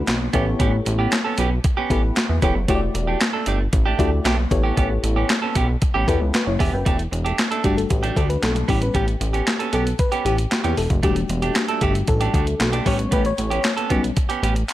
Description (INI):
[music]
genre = early-eighties boogie funk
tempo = 115 BPM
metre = 4/4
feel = straight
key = unclear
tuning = A4 = 438 Hz
[part]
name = FM electric piano with tremolo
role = accompaniment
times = 0.0-14.1 s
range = G3 to G5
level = -25 LUFS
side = left 4 dB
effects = none
[part]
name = chorused synth bass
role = bass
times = 0.0-14.6 s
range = E1 to E2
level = -22 LUFS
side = equal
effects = none
[part]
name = clean 12-bit digital drum machine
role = drums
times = 0.1-14.7 s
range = handclaps, hi-hat, kick drum, snare drum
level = -22 LUFS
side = equal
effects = overdrive
[part]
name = clean electric guitar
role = riff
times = 0.2-14.6 s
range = A3 to A4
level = -26 LUFS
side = right 6 dB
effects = wide subtle chorus
[sound]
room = little or no reverb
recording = none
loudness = -18 LUFS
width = side -14 dB against mid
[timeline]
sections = 0.0-6.9 A section; 6.9-14.7 B section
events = FM electric piano solo 6.9-14.7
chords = 0.3 A9; 2.7 Em11; 4.5 A9; 6.9 Em11; 8.7 A9; 11.0 Em11; 12.9 A9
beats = 0.08 | 0.60 1.12 1.64 2.17 | 2.69 3.21 3.73 4.25 | 4.77 5.30 5.82 6.34 | 6.86 7.38 7.90 8.43 | 8.95 9.47 9.99 10.51 | 11.04 11.56 12.08 12.60 | 13.12 13.64 14.16 14.69